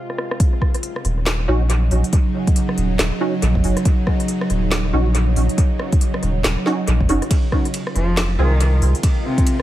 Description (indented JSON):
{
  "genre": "deep dubstep",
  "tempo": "139 BPM",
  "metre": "4/4",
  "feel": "swing 60% on 16ths, half-time",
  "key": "Eb dorian",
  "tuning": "A4 = 439 Hz",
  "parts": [
    { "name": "bowed-like drone", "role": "sustained chords", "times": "0.0-9.6 s", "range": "C3 to F4", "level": "-24 LUFS", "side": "right 1 dB", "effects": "built-in reverb" },
    { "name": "deep house drum kit", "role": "drums", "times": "0.1-9.6 s", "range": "handclaps, hi-hat, ride cymbal, rim click, snare drum", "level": "-25 LUFS", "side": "equal", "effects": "low-pass filter on snare, low-pass filter on hats, low-pass filter on cymbals, analog delay" },
    { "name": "electronic kick drum", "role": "drums", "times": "0.4-9.4 s", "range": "none", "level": "-17 LUFS", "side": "equal", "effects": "none" },
    { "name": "soft dub sub bass", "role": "bass", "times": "1.0-8.9 s", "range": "Eb1 to C2", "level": "-17 LUFS", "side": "equal", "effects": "tube saturation" },
    { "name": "filtered dub chord stab", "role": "stabs", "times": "1.5-8.5 s", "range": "C4 to Ab4", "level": "-25 LUFS", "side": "right 2 dB", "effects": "ensemble chorus, analog delay" },
    { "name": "rich cello", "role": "melody", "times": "8.0-9.6 s", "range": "C3 to F3", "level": "-22 LUFS", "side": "left 1 dB", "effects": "dub echo" }
  ],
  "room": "light reverb",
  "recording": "echo-heavy mix",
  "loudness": "-16 LUFS",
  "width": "side -14 dB against mid",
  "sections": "0.4-9.6 A section",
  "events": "break 0.0-0.4; drum fill 0.1-0.4; drop 0.4-9.6",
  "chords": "0.4 Ebm7; 7.3 Fm"
}